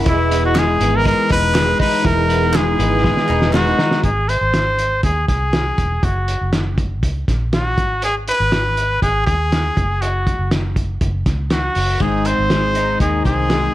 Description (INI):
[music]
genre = jangly indie pop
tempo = 120 BPM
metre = 4/4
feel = straight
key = unclear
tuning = A4 = 439 Hz
[part]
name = picked twelve-string acoustic guitar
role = accompaniment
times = 0.0-4.1, 12.0-13.7 s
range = G#2 to G#4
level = -26 LUFS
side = right 8 dB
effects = none
[part]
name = reed electric piano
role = accompaniment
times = 0.0-4.1 s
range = D#4 to D#5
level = -27 LUFS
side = right 6 dB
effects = fast tremolo
[part]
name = twelve-string electric guitar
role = arpeggios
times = 0.0-4.1, 12.0-13.7 s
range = G#2 to E4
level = -20 LUFS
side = left 6 dB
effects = none
[part]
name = vintage muted fingered electric bass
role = bass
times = 0.0-13.7 s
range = E1 to D#2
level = -20 LUFS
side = equal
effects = none
[part]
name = brilliant trumpet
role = melody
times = 0.1-13.7 s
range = E4 to B#4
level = -19 LUFS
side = equal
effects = slapback echo
[part]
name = cloth-damped thuddy drum kit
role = drums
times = 0.1-13.6 s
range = hi-hat, kick drum, snare drum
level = -20 LUFS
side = equal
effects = none
[part]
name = group handclap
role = percussion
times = 0.6-3.7 s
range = none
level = -31 LUFS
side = right 4 dB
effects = none
[sound]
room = light reverb, small room ambience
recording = none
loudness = -15 LUFS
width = side -14 dB against mid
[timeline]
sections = 0.0-4.0 A section; 4.0-13.7 B section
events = drum fill 3.0-4.0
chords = 0.1 Emaj7; 4.0 G#; 6.0 F#; 7.8 G#m; 9.8 F#5; 12.0 G#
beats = | 0.06 0.56 1.06 1.55 | 2.05 2.55 3.04 3.54 | 4.04 4.54 5.04 5.54 | 6.03 6.53 7.03 7.53 | 8.03 8.53 9.02 9.52 | 10.02 10.52 11.02 11.51 | 12.01 12.51 13.01 13.50